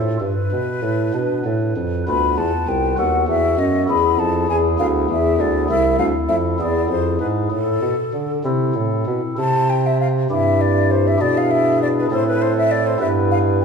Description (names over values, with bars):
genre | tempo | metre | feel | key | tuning
classical, baroque-style sonata movement with continuo | 66 BPM (dotted quarters) | 6/8 | rubato | A minor, C major from 9.4 s | A4 = 442 Hz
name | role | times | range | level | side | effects
pipe organ, stopped flute | accompaniment | 0.0-13.6 s | C2 to B4 | -20 LUFS | left 1 dB | none
mellow bassoon | bass | 0.0-13.6 s | C2 to D3 | -21 LUFS | right 2 dB | none
mellow hollow concert flute | melody | 0.2-13.6 s | A4 to B5 | -21 LUFS | left 2 dB | none
room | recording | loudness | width
moderate concert hall reverb, RT60 2.2 s | none | -16 LUFS | side -6 dB against mid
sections
0.0-9.4 A section; 9.4-13.6 A section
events
none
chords
0.2 G; 2.1 Bdim/D; 3.0 B7/D#; 3.9 E; 4.8 E7/D; 5.7 Am/C; 6.6 E; 7.5 Am; 9.4 C; 11.2 E7/B; 12.1 Am; 13.0 Em/G